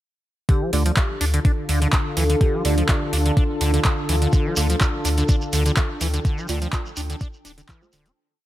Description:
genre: acid house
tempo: 125 BPM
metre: 4/4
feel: swing 53% on 16ths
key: D minor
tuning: A4 = 441 Hz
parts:
  - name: vibraphone with soft mallets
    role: melody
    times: 0.5-2.6 s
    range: G4 to A4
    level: -29 LUFS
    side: left 2 dB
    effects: digital delay
  - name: warm analog pad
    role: sustained chords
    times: 0.5-8.1 s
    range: D3 to A4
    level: -29 LUFS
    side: left 1 dB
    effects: chorus, sidechain pumping
  - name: acid bass, saw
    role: riff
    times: 0.5-8.1 s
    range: D3 to D4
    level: -27 LUFS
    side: equal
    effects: tube saturation, analog chorus, sidechain pumping
  - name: booming analog drum machine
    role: drums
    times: 0.5-8.1 s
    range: handclaps, hi-hat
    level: -27 LUFS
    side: right 1 dB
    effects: none
  - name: electronic kick drum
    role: drums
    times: 0.5-7.8 s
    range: none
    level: -19 LUFS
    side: equal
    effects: none
  - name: ethereal airy pad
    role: texture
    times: 1.2-8.2 s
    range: D4 to A5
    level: -31 LUFS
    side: right 2 dB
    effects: ensemble chorus, built-in reverb, sidechain pumping
  - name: deep mellow chord stab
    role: stabs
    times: 0.7-8.0 s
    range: A3 to D5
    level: -31 LUFS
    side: right 5 dB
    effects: chorus, digital delay
  - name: warm sub bass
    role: bass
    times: 0.7-8.1 s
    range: D1 to D2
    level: -21 LUFS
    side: equal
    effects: tube saturation, sidechain pumping
  - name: shekere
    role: percussion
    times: 4.3-8.1 s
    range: none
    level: -32 LUFS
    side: right 2 dB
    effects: none
room: little or no reverb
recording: none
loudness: -18 LUFS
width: side -14 dB against mid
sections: 0.5-8.2 groove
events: fade-out 5.6-8.2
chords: 0.5 Dm

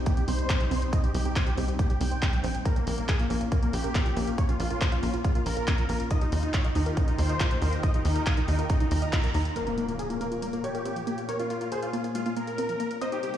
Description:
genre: uplifting trance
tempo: 139 BPM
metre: 4/4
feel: straight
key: Bb dorian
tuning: A4 = 439 Hz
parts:
  - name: analog string pad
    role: sustained chords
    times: 0.0-13.4 s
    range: Bb2 to G5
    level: -35 LUFS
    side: left 1 dB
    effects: ensemble chorus, sidechain pumping
  - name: big supersaw lead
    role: melody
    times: 0.1-13.4 s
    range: Bb3 to Bb5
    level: -33 LUFS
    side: left 1 dB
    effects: sidechain pumping, low-pass filter, tape echo
  - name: tight sequenced synth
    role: arpeggios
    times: 0.1-13.4 s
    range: F3 to Eb5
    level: -36 LUFS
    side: right 2 dB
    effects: chorus, sidechain pumping, tape echo
  - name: big-room dance drum kit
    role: drums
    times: 0.1-13.4 s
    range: handclaps, hi-hat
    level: -36 LUFS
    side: equal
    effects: none
  - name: electronic kick drum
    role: drums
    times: 0.1-9.2 s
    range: none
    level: -26 LUFS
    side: equal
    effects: none
  - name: tight sequencer bass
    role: bass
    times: 0.3-9.5 s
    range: Bb1 to Eb2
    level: -27 LUFS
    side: equal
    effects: sidechain pumping
  - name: warm grand piano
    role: second line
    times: 9.6-13.4 s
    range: Ab4 to Db5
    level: -34 LUFS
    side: left 1 dB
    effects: tape echo
  - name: impact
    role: sound effects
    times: 9.6-11.3 s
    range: none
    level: -39 LUFS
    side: left 1 dB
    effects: none
room: light reverb, digital ambience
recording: played on a big sound system in a bare room, large studio reverb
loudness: -25 LUFS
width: side -11 dB against mid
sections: 0.0-9.6 A section; 9.6-13.4 B section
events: filter sweep on synth arpeggio sound 0.0-9.6; filter sweep on analog synth pad 0.0-9.6, 9.6-13.4; band accent 9.1; impact 9.6-11.3; filter sweep on supersaw synth 9.6-13.4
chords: 0.0 Cm; 2.7 Bbm; 6.1 Ebadd9; 9.6 Bbm

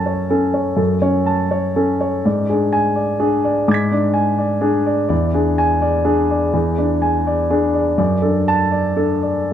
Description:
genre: neoclassical minimalist piano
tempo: 125 BPM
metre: 3/4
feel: rubato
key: unclear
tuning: A4 = 440 Hz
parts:
  - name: warm concert grand piano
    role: solo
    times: 0.0-9.5 s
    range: E2 to B6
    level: -15 LUFS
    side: equal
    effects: none
room: light reverb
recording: close, detailed microphones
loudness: -15 LUFS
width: side -10 dB against mid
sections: 0.0-9.5 A section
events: none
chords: 0.0 F#m; 2.3 G#dim; 5.1 E7; 8.0 D/F#

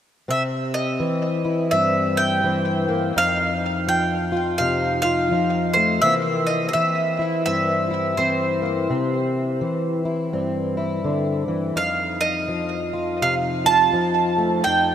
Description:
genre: acoustic country blues, solo or duo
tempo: 84 BPM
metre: 4/4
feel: swing 61% on 8ths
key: C mixolydian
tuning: A4 = 438 Hz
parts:
  - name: bowl-back mandolin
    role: melody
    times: 0.3-14.9 s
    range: C5 to A5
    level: -21 LUFS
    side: right 2 dB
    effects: tape echo
  - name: fingerpicked plugged-in steel-string acoustic guitar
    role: accompaniment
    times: 0.3-14.9 s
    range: F2 to F4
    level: -22 LUFS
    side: left 2 dB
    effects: analog chorus
room: wet huge ambient reverb, RT60 5.0 s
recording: dreamy mix soaked in reverb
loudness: -19 LUFS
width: side -9 dB against mid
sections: 0.3-14.9 A section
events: none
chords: 0.3 C; 3.2 F7(no3); 6.0 C7; 11.8 F7

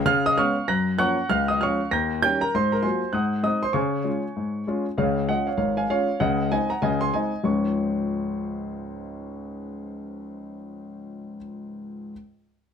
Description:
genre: jazz, stride piano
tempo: 195 BPM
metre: 4/4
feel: swing 62% on 8ths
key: Db major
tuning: A4 = 444 Hz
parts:
  - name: clear grand piano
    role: solo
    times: 0.1-12.1 s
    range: Ab1 to Bb6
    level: -22 LUFS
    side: equal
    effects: none
room: light reverb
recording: none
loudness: -21 LUFS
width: side -7 dB against mid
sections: 0.0-5.0 A section; 5.0-7.4 B section; 7.4-9.9 C section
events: none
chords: 0.1 Db7; 0.7 Gbmaj7; 1.3 Db; 1.9 Eb7; 2.5 Ab13; 3.1 Ab7; 3.8 Db; 6.2 Ab7/Db; 7.4 Db

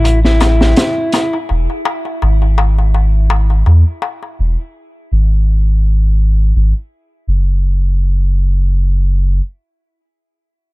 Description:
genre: trip hop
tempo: 83 BPM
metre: 4/4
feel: swing 55% on 16ths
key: F# minor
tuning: A4 = 440 Hz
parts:
  - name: electric slide guitar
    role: melody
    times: 0.0-1.4 s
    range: E4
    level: -20 LUFS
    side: left 1 dB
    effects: tape echo
  - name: soft dub sub bass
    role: bass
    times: 0.0-9.4 s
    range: E1 to E2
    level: -11 LUFS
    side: equal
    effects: none
  - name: darbuka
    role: percussion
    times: 0.0-4.4 s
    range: none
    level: -22 LUFS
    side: left 6 dB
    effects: none
  - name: crunchy breakbeat drum kit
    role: drums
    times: 0.1-1.3 s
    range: hi-hat, snare drum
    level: -15 LUFS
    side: equal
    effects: none
room: small room ambience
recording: dark, warm production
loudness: -11 LUFS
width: side -21 dB against mid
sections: 0.0-7.3 A section; 7.3-10.2 B section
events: none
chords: 0.0 F#m7 (rootless); 1.5 N.C.

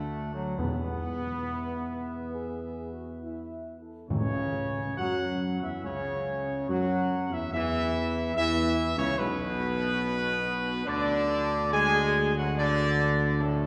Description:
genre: classical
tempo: 70 BPM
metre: 4/4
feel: straight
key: unclear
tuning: A4 = 439 Hz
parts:
  - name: dark trumpet section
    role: melody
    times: 0.0-13.7 s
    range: A4 to G#5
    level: -33 LUFS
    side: equal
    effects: none
  - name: bright trombone section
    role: sustained chords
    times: 0.0-13.7 s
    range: A2 to B3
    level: -36 LUFS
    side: equal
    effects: none
  - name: mellow French horn section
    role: sustained chords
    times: 0.0-13.7 s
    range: A3 to B4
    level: -38 LUFS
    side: equal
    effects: none
  - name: dark tuba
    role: bass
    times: 0.0-13.7 s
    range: B1 to F#2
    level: -34 LUFS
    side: equal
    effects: none
  - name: timpani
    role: percussion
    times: 0.6-5.4 s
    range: E2 to A2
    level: -36 LUFS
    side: equal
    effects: none
room: wet church reverb, RT60 2.8 s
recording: recorded in a church or concert hall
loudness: -29 LUFS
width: mono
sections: 0.0-4.1 A section; 4.1-13.7 B section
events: none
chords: 0.0 D; 0.6 E; 4.1 C#madd11; 7.5 E5; 10.9 D5

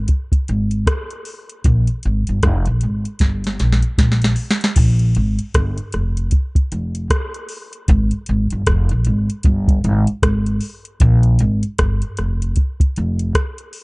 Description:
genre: roots reggae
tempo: 77 BPM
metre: 4/4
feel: swing 60% on 16ths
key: unclear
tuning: A4 = 440 Hz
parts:
  - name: upright bass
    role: bass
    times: 0.0-13.3 s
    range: F1 to Bb1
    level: -16 LUFS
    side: equal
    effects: none
  - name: soft vintage rhythm box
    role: drums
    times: 0.1-13.8 s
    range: crash cymbal, hi-hat, kick drum, rim click, snare drum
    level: -17 LUFS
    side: equal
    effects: none
room: little or no reverb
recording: nothing above 10.3 kHz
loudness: -15 LUFS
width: side -29 dB against mid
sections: 0.0-4.8 A section; 4.8-13.8 B section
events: drum fill 3.2-4.8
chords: none

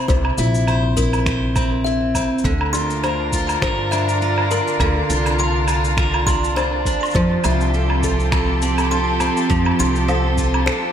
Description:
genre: folktronica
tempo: 102 BPM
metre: 4/4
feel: swing 56% on 16ths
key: unclear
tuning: A4 = 440 Hz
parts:
  - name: picked steel-string acoustic guitar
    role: arpeggios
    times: 0.0-10.9 s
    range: C3 to C5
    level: -22 LUFS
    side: right 2 dB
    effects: analog delay
  - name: kalimba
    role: second line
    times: 0.1-10.9 s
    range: A4 to C6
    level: -25 LUFS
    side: left 3 dB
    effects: ping-pong delay
  - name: upright bass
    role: bass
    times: 0.1-10.7 s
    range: Bb1 to G2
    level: -21 LUFS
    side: equal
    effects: none
  - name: electronic kick drum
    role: drums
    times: 0.1-10.5 s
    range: none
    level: -23 LUFS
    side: equal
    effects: none
  - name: electronic shaker, woodblock and finger snaps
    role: drums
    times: 0.1-10.8 s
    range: none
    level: -25 LUFS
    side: equal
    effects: none
  - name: flickering grainy texture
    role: texture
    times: 3.0-10.9 s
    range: A5 to A6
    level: -30 LUFS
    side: right 2 dB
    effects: built-in reverb, lush chorus
  - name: rich string quartet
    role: sustained chords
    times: 2.5-10.9 s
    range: D3 to Bb4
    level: -24 LUFS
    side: right 1 dB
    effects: none
room: moderate lush hall reverb, RT60 1.9 s, small room ambience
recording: dreamy mix soaked in reverb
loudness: -16 LUFS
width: side -9 dB against mid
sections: 0.0-10.9 A section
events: none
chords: 0.0 C; 2.4 Bb/D; 7.1 Fadd9

